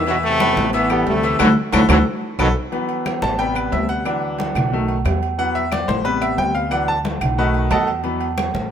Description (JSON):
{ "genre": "latin, salsa", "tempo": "180 BPM", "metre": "4/4", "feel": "straight", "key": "E minor", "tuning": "A4 = 440 Hz", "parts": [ { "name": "brilliant trombone section", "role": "melody", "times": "0.0-2.5 s", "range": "B2 to B3", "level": "-20 LUFS", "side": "equal", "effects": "none" }, { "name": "bright grand piano", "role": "accompaniment", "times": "0.0-8.3 s", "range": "C3 to A5", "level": "-21 LUFS", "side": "left 2 dB", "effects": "none" }, { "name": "upright bass", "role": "bass", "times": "0.0-8.7 s", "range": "A1 to E2", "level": "-22 LUFS", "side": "equal", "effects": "none" }, { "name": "agogo bells and timbales", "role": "percussion", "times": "0.1-8.5 s", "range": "none", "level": "-26 LUFS", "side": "right 9 dB", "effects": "none" }, { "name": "congas", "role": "percussion", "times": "0.1-8.7 s", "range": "none", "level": "-27 LUFS", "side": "left 3 dB", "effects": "none" }, { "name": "claves", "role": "percussion", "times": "0.4-8.5 s", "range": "none", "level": "-29 LUFS", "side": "left 4 dB", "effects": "none" } ], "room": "light reverb", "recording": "minimal, uncompressed stereo recording", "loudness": "-16 LUFS", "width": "side -8 dB against mid", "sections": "0.0-2.7 A section; 2.7-8.7 B section", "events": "band accent 1.4-2.7; drum fill 2.2-2.7; grand piano solo 2.7-8.7", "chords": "0.1 E5; 0.7 Am7; 1.4 Dadd9; 2.1 B7(no3); 2.7 Esus2; 3.4 Am7; 4.1 Dadd9; 4.7 B7; 5.4 Esus2; 6.1 Am7; 6.7 Dadd9; 7.4 B7; 8.0 Esus2" }